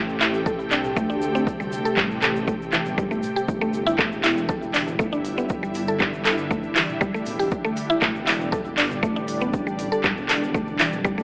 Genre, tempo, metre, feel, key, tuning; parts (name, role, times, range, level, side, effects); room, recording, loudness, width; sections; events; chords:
afro house; 119 BPM; 4/4; straight; A4 = 441 Hz
ethereal airy pad; sustained chords; 0.0-11.2 s; C3 to G4; -31 LUFS; equal; ensemble chorus, built-in reverb, sidechain pumping
mallet-like synth pluck; arpeggios; 0.0-11.2 s; E3 to A4; -28 LUFS; equal; chorus, sidechain pumping, analog delay
dark detuned saw bass; bass; 0.0-11.2 s; D1 to D2; -33 LUFS; equal; tube saturation, sidechain pumping
egg shaker; percussion; 0.1-11.2 s; -50 LUFS; equal
afro-pop drum kit; drums; 0.2-11.0 s; handclaps, hi-hat, toms; -25 LUFS; equal
electronic kick drum; drums; 0.5-11.2 s; -32 LUFS; equal; overdrive
light reverb, digital ambience; dry, gritty hardware recording, cassette tape, AM radio sound; -23 LUFS; mono
0.0-11.2 A section
0.0 Am7; 4.0 Em7